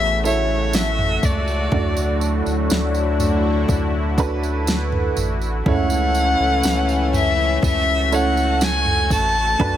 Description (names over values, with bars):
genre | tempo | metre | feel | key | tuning
pop ballad | 61 BPM | 4/4 | straight | A major | A4 = 438 Hz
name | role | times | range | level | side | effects
dark violin | melody | 0.0-9.8 s | C#5 to A5 | -21 LUFS | left 2 dB | none
mellow French horn section | second line | 0.0-9.8 s | E2 to D4 | -26 LUFS | left 6 dB | none
clear upright piano | accompaniment | 0.0-9.8 s | A2 to E5 | -25 LUFS | right 7 dB | none
sweeping resonant pad | sustained chords | 0.0-9.8 s | C#3 to F#4 | -29 LUFS | right 1 dB | chorus
saturated sub bass | bass | 0.0-9.8 s | A1 to D2 | -22 LUFS | equal | none
tambourine | percussion | 0.3-9.3 s | none | -31 LUFS | right 8 dB | none
smooth R&B drum kit | drums | 0.7-9.8 s | kick drum, snare drum, toms | -23 LUFS | equal | overdrive
room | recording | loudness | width
light reverb, studio ambience | none | -17 LUFS | side -11 dB against mid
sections
0.0-9.8 A section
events
none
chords
0.0 A; 1.7 D; 5.7 A/C#